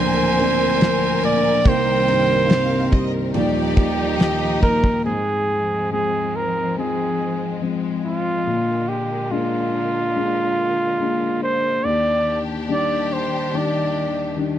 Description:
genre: pop ballad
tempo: 71 BPM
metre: 4/4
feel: straight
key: Eb major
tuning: A4 = 440 Hz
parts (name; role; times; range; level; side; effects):
- clear flugelhorn; melody; 0.0-14.4 s; F4 to D5; -21 LUFS; right 2 dB; none
- warm symphonic violin section; second line; 0.0-5.1 s; D5 to Ab5; -28 LUFS; right 1 dB; none
- dark upright piano; accompaniment; 0.0-14.6 s; D1 to D4; -23 LUFS; left 5 dB; none
- rich studio string section; sustained chords; 0.0-14.6 s; D3 to Bb4; -28 LUFS; left 1 dB; none
- fingerpicked steel-string acoustic guitar; arpeggios; 0.0-5.6 s; C3 to Bb4; -25 LUFS; right 8 dB; none
- damped 70s drum kit; drums; 0.4-5.0 s; kick drum, ride cymbal, snare drum; -16 LUFS; equal; none
room: little or no reverb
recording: dry, close 1970s-style studio recording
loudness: -18 LUFS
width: side -11 dB against mid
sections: 0.0-5.1 A section; 5.1-14.6 B section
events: none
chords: 0.0 Bbadd9/D; 1.7 Cm7; 3.3 Ebadd9; 5.1 Ab6; 8.5 Bb7; 11.8 Ebmaj7

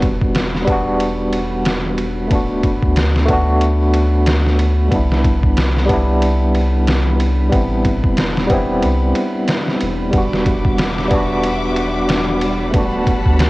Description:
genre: trip hop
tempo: 92 BPM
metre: 4/4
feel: swing 58% on 16ths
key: E minor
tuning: A4 = 440 Hz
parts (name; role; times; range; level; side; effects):
- barky tine electric piano; accompaniment; 0.0-13.5 s; G3 to F#4; -18 LUFS; equal; tremolo, cassette tape, tape echo
- soft dub sub bass; bass; 0.0-13.5 s; D1 to D2; -18 LUFS; equal; tube saturation
- trip hop sampler-style drum kit; drums; 0.0-13.5 s; kick drum, ride cymbal, snare drum; -19 LUFS; equal; cassette tape
- wind-like tuned noise texture; texture; 0.1-13.5 s; D4 to B5; -29 LUFS; left 2 dB; built-in reverb, cassette tape
- clear studio string section; sustained chords; 10.1-13.5 s; G3 to D6; -24 LUFS; left 1 dB; cassette tape
room: light reverb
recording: home recording on cassette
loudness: -14 LUFS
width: side -20 dB against mid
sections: 0.0-13.5 A section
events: none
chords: 0.0 Em9; 2.3 D6; 4.9 Cmaj9; 7.5 Am9; 10.1 Em9; 12.7 Gmaj9/D

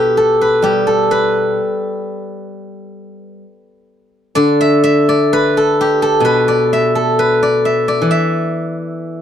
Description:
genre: chinese traditional, Chinese solo plucked strings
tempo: 65 BPM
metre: 4/4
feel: rubato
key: E yu mode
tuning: A4 = 440 Hz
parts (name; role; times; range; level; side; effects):
- steel-string zither; solo; 0.0-9.2 s; B2 to E5; -12 LUFS; equal; none
room: moderate booth ambience, RT60 0.2 s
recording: dry, close 1970s-style studio recording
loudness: -12 LUFS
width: side -9 dB against mid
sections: 0.0-9.2 A section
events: none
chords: none

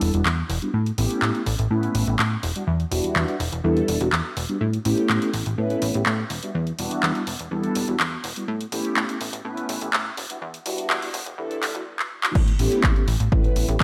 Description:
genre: filtered disco house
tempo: 124 BPM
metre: 4/4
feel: straight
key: E dorian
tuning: A4 = 441 Hz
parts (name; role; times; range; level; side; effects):
- mellow synth brass; accompaniment; 0.0-13.8 s; G3 to B4; -28 LUFS; equal; chorus, phaser, cassette tape, sidechain pumping, low-pass filter
- plucky analog bass; bass; 0.0-13.8 s; E1 to A2; -28 LUFS; equal; tube saturation, sidechain pumping, low-pass filter
- house drum kit; drums; 0.0-13.8 s; crash cymbal, handclaps, hi-hat; -28 LUFS; equal; sidechain pumping on hats, studio reverb, sidechain pumping on cymbals
- electronic kick drum; drums; 12.4-13.8 s; none; -22 LUFS; equal; studio reverb
room: moderate echo chamber reverb, RT60 1.6 s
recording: high-pass filter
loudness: -24 LUFS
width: mono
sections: 0.0-12.4 A section; 12.4-13.8 B section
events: build-up 0.0-12.4; filter sweep 0.0-12.4; drum fill 12.0-12.4; drop 12.4-13.8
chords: 0.0 Em7; 0.7 A7; 2.4 Em7; 4.6 A7; 6.3 Em7; 8.5 A7; 10.2 Em7; 12.4 A7

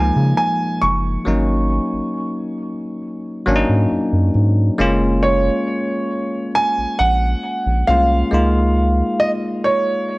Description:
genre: contemporary R&B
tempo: 68 BPM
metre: 4/4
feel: straight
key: unclear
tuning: A4 = 439 Hz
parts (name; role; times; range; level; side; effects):
- clear concert grand piano; melody; 0.0-10.2 s; Db5 to Db6; -19 LUFS; right 1 dB; tape echo
- bell-like tine electric piano; accompaniment; 0.0-10.2 s; F3 to F4; -20 LUFS; left 1 dB; none
- round analog bass; bass; 0.0-9.0 s; Gb1 to Db3; -17 LUFS; equal; none
room: light reverb, small room ambience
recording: worn, warbling old tape, cassette tape, warbly pitch drift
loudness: -15 LUFS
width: side -22 dB against mid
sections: 0.0-4.8 A section; 4.8-10.2 B section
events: none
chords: 0.0 Db6; 1.3 Ab7sus4; 4.8 Gbmaj9; 8.3 Db6

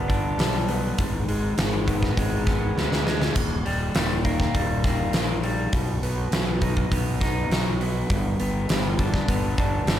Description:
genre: quiet-loud alternative rock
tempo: 101 BPM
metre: 4/4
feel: straight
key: unclear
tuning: A4 = 439 Hz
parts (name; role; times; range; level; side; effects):
- electric guitar through a small old amp; arpeggios; 0.0-10.0 s; Eb2 to D#4; -27 LUFS; left 1 dB; tape echo
- fuzz fingered electric bass; bass; 0.0-10.0 s; Eb1 to D2; -27 LUFS; equal; overdrive
- huge arena drum kit; drums; 0.1-10.0 s; hi-hat, kick drum, snare drum, splash cymbal; -25 LUFS; equal; none
room: moderate lush hall reverb, RT60 2.2 s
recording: big arena sound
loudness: -21 LUFS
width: side -11 dB against mid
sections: 0.0-10.0 A section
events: drum fill 2.8-3.4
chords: 0.0 G; 1.0 Abm; 3.4 Eb; 5.7 B; 8.1 G

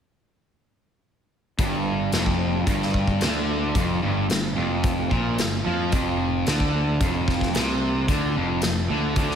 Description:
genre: classic rock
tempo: 111 BPM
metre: 4/4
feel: straight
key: unclear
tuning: A4 = 440 Hz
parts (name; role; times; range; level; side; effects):
- biting overdriven guitar; riff; 1.6-9.4 s; F2 to F3; -26 LUFS; left 8 dB; slapback echo
- crunchy overdriven guitar; riff; 1.6-9.4 s; F2 to F3; -26 LUFS; right 8 dB; slapback echo
- fuzz picked electric bass; bass; 1.6-9.4 s; F1 to F2; -28 LUFS; equal; overdrive
- raw garage drum kit; drums; 1.6-9.4 s; hi-hat, kick drum, snare drum; -26 LUFS; equal; none
room: moderate lush hall reverb, RT60 1.8 s, small room ambience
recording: big arena sound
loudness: -21 LUFS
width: side -8 dB against mid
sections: 1.6-9.4 A section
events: none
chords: 1.6 G5; 5.9 F5

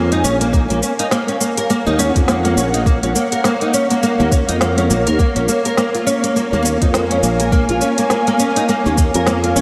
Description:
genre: organic downtempo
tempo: 103 BPM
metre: 4/4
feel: swing 58% on 16ths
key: Bb minor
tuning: A4 = 440 Hz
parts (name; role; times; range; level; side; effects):
- ethereal airy pad; sustained chords; 0.0-9.6 s; Bb3 to Ab5; -22 LUFS; equal; ensemble chorus, built-in reverb, sidechain pumping
- nylon-string guitar; arpeggios; 0.0-9.6 s; Bb3 to Bb4; -21 LUFS; equal; ensemble chorus, delay
- sustaining fretless electric bass; bass; 0.0-9.6 s; Bb1 to F2; -21 LUFS; equal; tube saturation, ensemble chorus, sidechain pumping
- organic electronic drum kit; drums; 0.1-9.6 s; cabasa, hi-hat, snare drum; -25 LUFS; equal; none
- electronic kick drum; drums; 0.5-9.1 s; none; -17 LUFS; equal; none
room: wet lush hall reverb, RT60 2.0 s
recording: dreamy mix soaked in reverb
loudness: -16 LUFS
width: mono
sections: 0.0-9.6 A section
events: none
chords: 0.0 Bbm7; 0.5 Ebm7/Bb; 5.2 Bbm7

